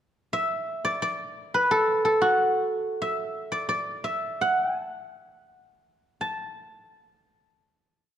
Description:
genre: chinese traditional, Chinese solo plucked strings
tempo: 56-94 BPM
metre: 2/4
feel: rubato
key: A zhi mode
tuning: A4 = 438 Hz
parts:
  - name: guzheng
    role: solo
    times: 0.3-8.2 s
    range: F#4 to A5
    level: -24 LUFS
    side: equal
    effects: none
room: moderate scoring stage reverb, RT60 1.8 s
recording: dark, warm production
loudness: -24 LUFS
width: side -10 dB against mid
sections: 0.3-6.2 A section; 6.2-8.2 final note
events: slowing down 3.0-6.2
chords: none

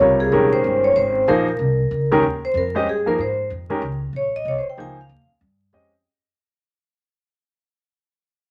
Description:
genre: jazz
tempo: 189 BPM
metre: 3/4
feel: swing 63% on 8ths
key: unclear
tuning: A4 = 440 Hz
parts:
  - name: vibraphone with medium hard mallets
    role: melody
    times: 0.0-5.3 s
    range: G4 to Ab5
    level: -22 LUFS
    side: equal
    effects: none
  - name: warm baby grand piano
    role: accompaniment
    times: 0.0-5.9 s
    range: C3 to Eb5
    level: -22 LUFS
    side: equal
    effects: none
  - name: upright bass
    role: bass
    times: 0.0-6.0 s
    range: G1 to Ab2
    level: -29 LUFS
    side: equal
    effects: none
room: light reverb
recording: vinyl crackle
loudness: -20 LUFS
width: mono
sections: 0.0-2.2 A section; 2.2-6.0 B section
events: fade-out 2.2-6.0; vibraphone solo 2.2-6.0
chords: 0.0 Eb9sus4

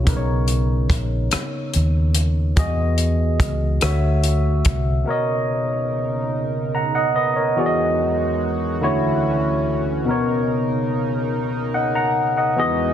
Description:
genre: slow six-eight R&B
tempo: 48 BPM (dotted quarters)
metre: 6/8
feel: straight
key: unclear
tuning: A4 = 440 Hz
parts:
  - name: barky tine electric piano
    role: accompaniment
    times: 0.0-12.9 s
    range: B2 to A#5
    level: -20 LUFS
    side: left 1 dB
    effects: overdrive, lush chorus
  - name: vintage muted fingered electric bass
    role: bass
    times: 0.0-5.0 s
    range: A#1 to E2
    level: -19 LUFS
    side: equal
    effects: none
  - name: compact cocktail drum kit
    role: drums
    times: 0.1-4.8 s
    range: hi-hat, kick drum, rim click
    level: -21 LUFS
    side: equal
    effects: soft clipping on snare
  - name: chorused pulse-width pad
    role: sustained chords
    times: 5.1-12.9 s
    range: D2 to A#4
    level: -27 LUFS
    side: right 4 dB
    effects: none
room: small room ambience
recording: dense, heavily limited modern master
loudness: -18 LUFS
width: side -10 dB against mid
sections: 0.0-5.1 A section; 5.1-12.9 B section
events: none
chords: 0.1 Bmaj9; 2.6 Emaj9; 3.8 Dmaj9; 5.1 Bmaj9; 7.6 Emaj9; 8.8 Dmaj9; 10.1 Bmaj9

